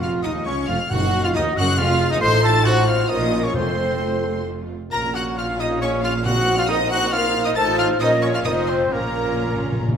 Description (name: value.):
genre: quick classical-period movement for symphony orchestra.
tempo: 135 BPM.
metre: 3/4.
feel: rubato.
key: Bb minor.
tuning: A4 = 441 Hz.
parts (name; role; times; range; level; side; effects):
clear chamber violin section; melody; 0.0-9.8 s; Bb5 to C7; -28 LUFS; left 3 dB; none.
clear oboe; second line; 0.0-9.9 s; Bb4 to C6; -29 LUFS; right 1 dB; none.
rich chamber violin section; second line; 0.0-9.9 s; Bb4 to C6; -30 LUFS; left 2 dB; none.
small flute group; second line; 0.0-9.9 s; Bb4 to C6; -27 LUFS; equal; none.
rich chamber viola section; accompaniment; 0.0-10.0 s; A3 to Gb4; -27 LUFS; right 2 dB; none.
dark French horn section; sustained chords; 0.0-10.0 s; Eb4 to C5; -26 LUFS; left 4 dB; none.
warm trumpet; stabs; 0.0-9.9 s; Bb3 to C5; -26 LUFS; right 1 dB; none.
clear chamber double bass section; bass; 0.0-10.0 s; F1 to Eb2; -27 LUFS; right 3 dB; none.
clear studio cello section; bass; 0.0-10.0 s; Db2 to Bb2; -27 LUFS; right 2 dB; none.
timpani; percussion; 0.0-1.5, 3.5-4.2, 6.3-6.9, 8.9-9.9 s; F2 to Bb2; -29 LUFS; equal; none.
room: wet recital hall reverb, RT60 1.3 s.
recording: none.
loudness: -17 LUFS.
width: side -7 dB against mid.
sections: 0.0-10.0 A section.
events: timpani fill 8.9-10.0.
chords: 0.0 Bbm; 0.9 Ebmadd9; 2.2 F7/A; 3.1 Bbm; 3.6 F; 4.9 Bbm; 6.3 Cm7b5/Bb; 7.6 F7/A; 8.0 Bbm; 8.5 F5; 8.9 Bbm.